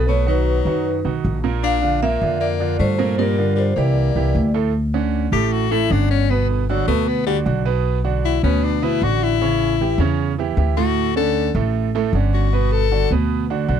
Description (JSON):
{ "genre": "jazz", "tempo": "154 BPM", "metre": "4/4", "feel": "straight", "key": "D major", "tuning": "A4 = 444 Hz", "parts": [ { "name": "clear baby grand piano", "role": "accompaniment", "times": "0.0-13.8 s", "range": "A2 to C#5", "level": "-22 LUFS", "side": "right 12 dB", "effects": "none" }, { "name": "upright bass", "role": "bass", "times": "0.0-13.8 s", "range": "G1 to G2", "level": "-20 LUFS", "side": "equal", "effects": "none" }, { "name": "vibraphone with medium hard mallets", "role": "melody", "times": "0.1-4.5 s", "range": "Bb4 to F5", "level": "-22 LUFS", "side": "left 1 dB", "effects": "none" }, { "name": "bright tenor saxophone", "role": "second line", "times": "0.1-13.1 s", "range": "D3 to A4", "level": "-22 LUFS", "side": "left 16 dB", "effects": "none" } ], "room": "little or no reverb", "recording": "dry, close 1970s-style studio recording", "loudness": "-16 LUFS", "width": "side -8 dB against mid", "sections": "0.0-4.7 A section; 4.7-13.8 B section", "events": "tenor saxophone solo 4.7-13.8", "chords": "0.1 B; 1.6 Bbmaj7; 3.2 Gm7; 4.0 C9; 4.7 D5; 6.3 Gmaj7; 7.8 Bm7; 9.4 A7; 11.0 D5; 12.5 Gmaj7" }